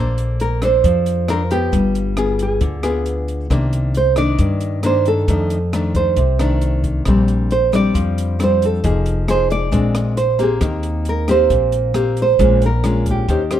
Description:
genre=bossa nova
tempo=135 BPM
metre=4/4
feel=straight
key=Bb major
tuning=A4 = 440 Hz
part: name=nylon-string guitar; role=accompaniment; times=0.0-13.6 s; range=F2 to C5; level=-20 LUFS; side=left 3 dB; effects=none
part: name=upright bass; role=bass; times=0.0-13.6 s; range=F1 to G2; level=-19 LUFS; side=equal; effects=none
part: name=compact cocktail drum kit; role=drums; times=0.2-13.6 s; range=hi-hat, kick drum, rim click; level=-24 LUFS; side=equal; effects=none
part: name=nylon-string guitar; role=melody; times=0.4-13.6 s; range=G4 to D5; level=-19 LUFS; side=right 5 dB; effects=none
room=small room ambience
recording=rough home demo mix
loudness=-14 LUFS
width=side -11 dB against mid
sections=0.0-13.6 A section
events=none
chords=0.0 Bbmaj9; 1.7 G7b9; 3.5 Cm9; 5.3 F6; 7.1 Bb69; 8.8 Fm7; 9.7 Bb9; 10.6 Eb6; 12.4 Bbm7

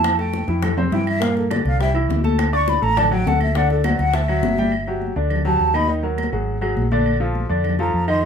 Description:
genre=Afro-Cuban jazz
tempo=205 BPM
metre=4/4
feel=straight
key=D major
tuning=A4 = 440 Hz
part: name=breathy mellow jazz flute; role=melody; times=0.0-8.2 s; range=A4 to C#6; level=-22 LUFS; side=equal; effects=none
part: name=warm baby grand piano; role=accompaniment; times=0.0-8.3 s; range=A2 to D6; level=-22 LUFS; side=left 1 dB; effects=none
part: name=hollow-body short-scale fingered electric bass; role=bass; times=0.0-8.3 s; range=G1 to G2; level=-22 LUFS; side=equal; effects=none
part: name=bongos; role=percussion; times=0.0-4.7 s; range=none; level=-29 LUFS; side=left 6 dB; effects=none
part: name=claves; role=percussion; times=0.0-8.2 s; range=none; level=-32 LUFS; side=right 5 dB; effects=none
part: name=congas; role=percussion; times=0.0-8.3 s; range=none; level=-26 LUFS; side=left 2 dB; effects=none
room=moderate studio reverb, RT60 0.7 s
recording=minimal, uncompressed stereo recording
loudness=-17 LUFS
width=side -7 dB against mid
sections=0.0-4.7 A section; 4.7-8.3 A section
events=flute solo 0.0-8.3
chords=0.0 Fmaj9; 1.2 Gm; 1.8 Cadd9; 2.4 D; 4.1 Dadd9; 4.7 Gsus2; 5.9 Ebm; 6.5 Absus2; 7.1 Bbmaj7

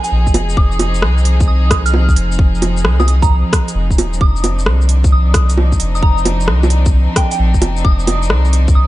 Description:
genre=future garage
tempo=132 BPM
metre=4/4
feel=swing 67% on 16ths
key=F dorian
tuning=A4 = 439 Hz
part: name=soft synth bell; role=melody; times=0.0-8.9 s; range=G5 to F6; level=-23 LUFS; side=right 2 dB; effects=chorus, phaser, dub echo
part: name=warm chamber string section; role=sustained chords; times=0.0-8.9 s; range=F3 to Ab4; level=-22 LUFS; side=right 1 dB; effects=sidechain pumping
part: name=organic electronic drum kit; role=drums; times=0.0-8.7 s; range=bongos, hi-hat, rim click, shaker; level=-19 LUFS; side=right 1 dB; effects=small room ambience
part: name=soft dub sub bass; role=bass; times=0.1-8.9 s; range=Eb1 to C2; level=-13 LUFS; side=equal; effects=sidechain pumping
part: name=electronic kick drum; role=drums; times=0.3-8.7 s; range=none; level=-13 LUFS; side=equal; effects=small room ambience
room=digital ambience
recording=nothing above 10.5 kHz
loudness=-11 LUFS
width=side -16 dB against mid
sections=0.0-8.9 A section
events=none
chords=0.0 Fm7; 4.2 Cmadd9/F

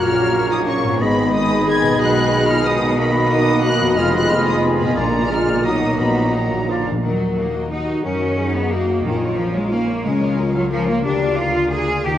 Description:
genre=classical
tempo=180 BPM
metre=3/4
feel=straight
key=Eb minor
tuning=A4 = 440 Hz
part: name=clear symphonic violin section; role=melody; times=0.0-12.2 s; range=Db5 to G#6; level=-27 LUFS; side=left 2 dB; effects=none
part: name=bright small flute group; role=second line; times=0.0-6.9 s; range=A#5 to B5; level=-26 LUFS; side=left 1 dB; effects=none
part: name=mellow clarinet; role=second line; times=0.0-6.9 s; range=D#4 to F#4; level=-26 LUFS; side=equal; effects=none
part: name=warm oboe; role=second line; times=0.0-6.9 s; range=C#5 to D#5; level=-25 LUFS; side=right 1 dB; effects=none
part: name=warm symphonic violin section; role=second line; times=0.0-12.2 s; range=F4 to F5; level=-29 LUFS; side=left 2 dB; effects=none
part: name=rich symphonic viola section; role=accompaniment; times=0.0-12.2 s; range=F#3 to G#4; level=-28 LUFS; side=equal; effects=none
part: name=warm bassoon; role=accompaniment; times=0.0-6.9 s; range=F3 to A#3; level=-27 LUFS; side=right 2 dB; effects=none
part: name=dark French horn section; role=sustained chords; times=0.0-12.2 s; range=Bb3 to Bb4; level=-23 LUFS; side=left 2 dB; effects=none
part: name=warm trombone section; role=sustained chords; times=0.0-6.9 s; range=C#3 to A#3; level=-26 LUFS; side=right 3 dB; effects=none
part: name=concert harp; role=arpeggios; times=0.0-12.2 s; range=F2 to Bb5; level=-26 LUFS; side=left 5 dB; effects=none
part: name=bright symphonic cello section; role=bass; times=0.0-12.2 s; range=F2 to Ab4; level=-23 LUFS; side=right 2 dB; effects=none
part: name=clear symphonic double bass section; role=bass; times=0.0-12.2 s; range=F1 to Gb2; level=-26 LUFS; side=right 3 dB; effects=none
part: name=timpani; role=percussion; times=5.0-7.0, 9.0-9.5 s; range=Bb2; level=-29 LUFS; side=equal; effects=none
room=wet concert hall reverb, RT60 2.0 s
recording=worn, warbling old tape, cassette tape, warbly pitch drift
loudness=-15 LUFS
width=side -11 dB against mid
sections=0.0-7.0 A section; 7.0-12.2 B section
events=timpani fill 6.7-7.0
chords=0.0 F#/A#; 1.0 G#m; 2.0 G#m/B; 3.0 Bmaj7; 4.0 Fm7b5; 5.0 Bb7; 5.6 Bmaj7; 6.0 Ebm/Bb; 6.7 Bb; 7.0 Ebm; 8.1 Ebm/Gb; 9.1 Bbm; 10.1 Bbm/Db; 11.1 Bb/D

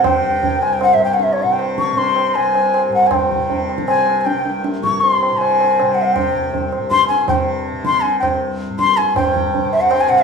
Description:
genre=indian classical, Hindustani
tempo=158 BPM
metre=4/4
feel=straight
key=unclear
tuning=A4 = 440 Hz
part: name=bansuri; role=melody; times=0.0-10.2 s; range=Db5 to Db6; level=-15 LUFS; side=left 1 dB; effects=none
part: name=tanpura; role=drone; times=0.0-10.2 s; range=C2 to C3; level=-24 LUFS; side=left 2 dB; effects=none
part: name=tabla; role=percussion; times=0.0-10.2 s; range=none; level=-20 LUFS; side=right 2 dB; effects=none
room=wet large studio reverb, RT60 0.9 s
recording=band playing live in one room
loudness=-14 LUFS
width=side -5 dB against mid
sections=0.0-9.2 A section; 9.2-10.2 B section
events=speeding up 0.0-10.2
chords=none

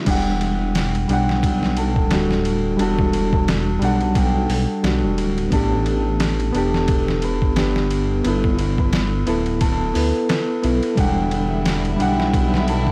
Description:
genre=trip hop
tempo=88 BPM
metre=4/4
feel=swing 57% on 16ths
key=E minor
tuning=A4 = 443 Hz
part: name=cimbalom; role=melody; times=0.0-12.9 s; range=E4 to B4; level=-29 LUFS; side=equal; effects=vintage 12-bit sampler grit, tape echo
part: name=reed electric piano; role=accompaniment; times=0.0-12.9 s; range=G3 to F#5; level=-24 LUFS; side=equal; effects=harmonic tremolo
part: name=dark detuned saw bass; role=bass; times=0.1-12.9 s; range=D1 to D2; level=-24 LUFS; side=equal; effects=none
part: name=trip hop sampler-style drum kit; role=drums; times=0.1-12.9 s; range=crash cymbal, hi-hat, kick drum, ride cymbal, snare drum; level=-26 LUFS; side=equal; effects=overdrive
part: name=dark studio string section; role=sustained chords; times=11.0-12.9 s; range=D3 to E4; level=-30 LUFS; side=equal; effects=none
room=little or no reverb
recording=dry, gritty hardware recording, transformer saturation, vinyl crackle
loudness=-19 LUFS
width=mono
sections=0.1-12.9 A section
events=none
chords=0.1 Em7; 5.5 A7sus4; 8.2 G69; 11.0 Em7

